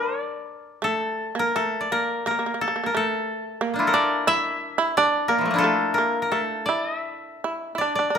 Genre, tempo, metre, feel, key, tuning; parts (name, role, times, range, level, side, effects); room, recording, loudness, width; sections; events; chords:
japanese traditional, Japanese chamber music; 81-91 BPM; 2/4; rubato; D hirajoshi; A4 = 441 Hz
koto; melody; 0.0-8.2 s; E3 to E5; -23 LUFS; left 2 dB
shamisen; second line; 0.0-8.2 s; A3 to E4; -26 LUFS; right 4 dB
moderate recital hall reverb, RT60 1.3 s; minimal, uncompressed stereo recording; -21 LUFS; side -7 dB against mid
0.0-1.5 A section; 1.5-8.2 B section